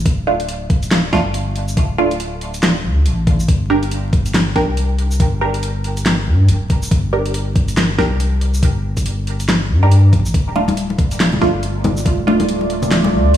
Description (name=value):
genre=deep dubstep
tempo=140 BPM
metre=4/4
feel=swing 60% on 16ths, half-time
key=D minor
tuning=A4 = 441 Hz
part: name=saturated sub bass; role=bass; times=0.0-13.4 s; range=D1 to G2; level=-18 LUFS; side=equal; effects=tube saturation
part: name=dubstep drum kit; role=drums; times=0.1-13.4 s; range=handclaps, hi-hat, shaker, snare drum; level=-20 LUFS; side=equal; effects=studio ambience
part: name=electronic kick drum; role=drums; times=0.1-12.2 s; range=none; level=-16 LUFS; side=equal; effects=studio ambience
part: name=filtered dub chord stab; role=stabs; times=0.3-12.4 s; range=A3 to Bb4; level=-21 LUFS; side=right 2 dB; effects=phaser, wide subtle chorus, dub echo
part: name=deep dark ambient pad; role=sustained chords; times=11.3-13.4 s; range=A3 to D5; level=-21 LUFS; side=right 2 dB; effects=chorus, built-in reverb
part: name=congas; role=percussion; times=10.6-13.1 s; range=none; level=-20 LUFS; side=left 3 dB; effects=dub echo
room=light reverb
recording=vinyl crackle, studio reverb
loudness=-14 LUFS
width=side -11 dB against mid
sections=0.0-13.4 A section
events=none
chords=0.0 D5; 3.5 G5; 10.3 Dm